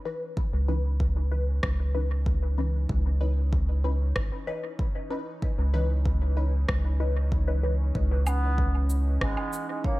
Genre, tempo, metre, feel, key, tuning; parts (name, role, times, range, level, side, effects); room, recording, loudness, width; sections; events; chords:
ambient dub; 95 BPM; 4/4; straight; C# minor; A4 = 439 Hz
warm analog pad; sustained chords; 0.0-10.0 s; E3 to C#5; -43 LUFS; equal; lush chorus
filtered dub chord stab; stabs; 0.1-7.8 s; E3 to B4; -35 LUFS; left 3 dB; phaser, analog chorus, cassette tape, dub echo
electronic kick drum; drums; 0.4-10.0 s; -29 LUFS; equal; studio reverb
round analog bass; bass; 0.5-9.4 s; G#1 to C#2; -24 LUFS; equal
electronic rim click, cabasa and woodblock; drums; 1.6-9.7 s; -35 LUFS; equal; overdrive, studio reverb, dub echo
trombone with straight mute; melody; 8.3-10.0 s; G#3 to B3; -33 LUFS; right 2 dB; dub echo
vibraphone with soft mallets; arpeggios; 8.3-10.0 s; C#4 to C#5; -36 LUFS; right 3 dB; dub echo
digital ambience; -24 LUFS; side -19 dB against mid
0.0-10.0 A section
fade-in on analog synth pad 0.0-10.0
0.0 C#m9